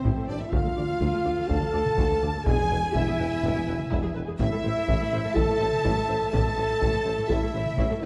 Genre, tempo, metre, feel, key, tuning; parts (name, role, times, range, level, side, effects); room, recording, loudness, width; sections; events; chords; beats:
cinematic, epic orchestral film score; 124 BPM; 4/4; straight; A harmonic minor; A4 = 441 Hz
warm symphonic violin section; melody; 0.0-8.1 s; B4 to A5; -39 LUFS; equal
clear symphonic violin section; second line; 0.0-8.1 s; B4 to A5; -41 LUFS; equal
mellow hollow concert flute; second line; 0.0-8.1 s; C5 to A5; -36 LUFS; equal
dark symphonic viola section; accompaniment; 0.0-8.1 s; E4 to G#5; -39 LUFS; equal
dark French horn section; sustained chords; 0.0-8.1 s; B3 to A4; -30 LUFS; equal
dark studio cello section; bass; 0.0-8.1 s; D2 to A2; -36 LUFS; equal
rich studio double bass section; bass; 0.0-8.1 s; E1 to D2; -35 LUFS; equal
taiko ensemble; drums; 0.0-8.1 s; -32 LUFS; equal
warm tuba; bass; 0.1-8.1 s; E1 to D2; -36 LUFS; equal
timpani; percussion; 2.5-3.2 s; E2; -38 LUFS; equal
wet recital hall reverb, RT60 1.8 s; dark, warm production; -25 LUFS; mono
0.0-8.1 A section
0.0 Am; 0.5 Dm; 2.5 E; 4.4 A5
0.05 | 0.53 1.01 1.50 1.98 | 2.46 2.95 3.43 3.92 | 4.40 4.88 5.37 5.85 | 6.34 6.82 7.30 7.79